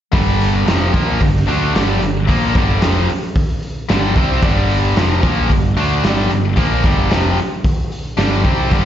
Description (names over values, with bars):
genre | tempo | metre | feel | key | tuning
classic rock | 112 BPM | 4/4 | straight | unclear | A4 = 440 Hz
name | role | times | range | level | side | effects
tight distorted guitar | riff | 0.1-8.8 s | F2 to D4 | -20 LUFS | left 10 dB | distortion, slapback echo
tight distorted guitar | riff | 0.1-8.8 s | F2 to D4 | -21 LUFS | right 11 dB | distortion, slapback echo
growling picked electric bass | bass | 0.1-8.8 s | F1 to D2 | -18 LUFS | equal | overdrive
raw garage drum kit | drums | 0.1-8.8 s | hi-hat, kick drum, snare drum | -17 LUFS | equal | none
room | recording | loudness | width
little or no reverb | live gig heard through the venue's PA, club reverb, nothing above 7.7 kHz | -13 LUFS | side -10 dB against mid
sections
0.1-8.8 A section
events
none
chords
0.1 G5